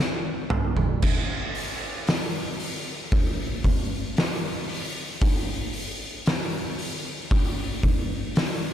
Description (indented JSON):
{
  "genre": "metal",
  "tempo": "57 BPM",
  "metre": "4/4",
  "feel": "straight",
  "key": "none",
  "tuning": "none",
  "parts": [
    { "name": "oversized low-tuned drum kit", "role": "drums", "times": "0.5-8.6 s", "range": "crash cymbal, hi-hat, kick drum, snare drum, toms", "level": "-24 LUFS", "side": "equal", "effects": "none" }
  ],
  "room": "little or no reverb",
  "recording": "dark, warm production",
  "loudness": "-24 LUFS",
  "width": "side -10 dB against mid",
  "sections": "0.0-8.7 A section",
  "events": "drum fill 0.0-1.0",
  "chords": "none"
}